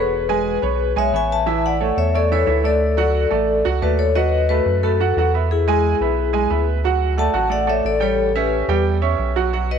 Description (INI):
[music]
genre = latin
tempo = 179 BPM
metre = 4/4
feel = straight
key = A major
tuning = A4 = 440 Hz
[part]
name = vibraphone with medium hard mallets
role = melody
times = 0.0-9.8 s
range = E4 to A5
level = -20 LUFS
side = left 7 dB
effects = none
[part]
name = bright upright piano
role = accompaniment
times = 0.0-9.8 s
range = E3 to G#5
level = -21 LUFS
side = right 11 dB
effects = none
[part]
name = rubbery square bass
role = bass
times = 0.0-9.8 s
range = E1 to F#2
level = -21 LUFS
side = equal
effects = none
[sound]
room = moderate plate reverb, RT60 3.4 s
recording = 1960s-style stereo with parts hard left and right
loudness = -16 LUFS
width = side -7 dB against mid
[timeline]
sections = 0.0-6.8 A section; 6.8-9.8 B section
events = none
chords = 0.1 E6; 1.5 A; 2.8 D; 4.2 B7/D#; 5.5 E; 6.8 D; 8.2 A7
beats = | 0.13 0.47 0.80 1.14 | 1.48 1.81 2.15 2.48 | 2.82 3.15 3.49 3.82 | 4.16 4.50 4.83 5.17 | 5.50 5.84 6.17 6.51 | 6.84 7.18 7.51 7.85 | 8.19 8.52 8.86 9.19 | 9.53